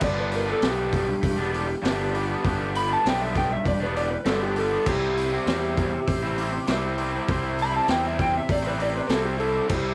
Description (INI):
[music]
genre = garage rock duo or trio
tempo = 99 BPM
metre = 4/4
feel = straight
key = unclear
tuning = A4 = 440 Hz
[part]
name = electric slide guitar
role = melody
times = 0.0-9.9 s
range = G4 to B5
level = -29 LUFS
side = equal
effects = cassette tape
[part]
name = combo organ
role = sustained chords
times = 0.0-9.9 s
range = D4 to C5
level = -38 LUFS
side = equal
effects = cassette tape
[part]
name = raw garage guitar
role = riff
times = 0.0-9.9 s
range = G2 to E4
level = -31 LUFS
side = equal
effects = overdrive, cassette tape
[part]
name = fuzz fingered electric bass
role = bass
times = 0.0-9.9 s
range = E1 to E2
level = -33 LUFS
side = equal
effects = overdrive
[part]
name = raw garage drum kit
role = drums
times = 0.0-9.8 s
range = crash cymbal, hi-hat, kick drum, snare drum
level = -31 LUFS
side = equal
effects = cassette tape
[sound]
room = small room ambience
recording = home recording on cassette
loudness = -25 LUFS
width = mono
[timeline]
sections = 0.0-9.9 A section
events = electric slide guitar solo 0.0-9.9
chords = 0.0 G; 4.9 C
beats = | 0.03 0.63 1.24 1.84 | 2.45 3.05 3.66 4.26 | 4.87 5.47 6.08 6.68 | 7.29 7.89 8.49 9.10 | 9.70